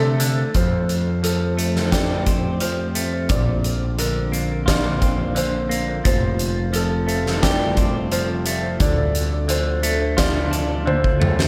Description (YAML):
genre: post-rock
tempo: 87 BPM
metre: 4/4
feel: straight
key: unclear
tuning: A4 = 441 Hz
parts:
  - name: deep dark ambient pad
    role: sustained chords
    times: 0.9-11.5 s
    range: C3 to C5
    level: -32 LUFS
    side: equal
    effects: chorus, built-in reverb
  - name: felt-muted upright piano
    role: arpeggios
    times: 0.0-11.5 s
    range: A4 to D5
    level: -30 LUFS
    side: equal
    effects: tape echo
  - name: semi-hollow electric guitar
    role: arpeggios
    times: 0.0-11.5 s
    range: Bb2 to G4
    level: -28 LUFS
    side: equal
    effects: tape echo
  - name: growling fingered electric bass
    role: bass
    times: 0.0-11.5 s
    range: F1 to C3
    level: -26 LUFS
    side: equal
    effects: overdrive
  - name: huge arena drum kit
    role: drums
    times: 0.2-11.5 s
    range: hi-hat, kick drum, snare drum, toms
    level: -24 LUFS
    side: equal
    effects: none
room: moderate lush hall reverb, RT60 2.3 s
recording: big arena sound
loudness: -20 LUFS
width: mono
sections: 0.5-11.5 A section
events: drum fill 10.9-11.5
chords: 0.0 Dm; 0.5 Fadd9; 3.3 Bbadd9; 6.1 Fadd9; 8.8 Dm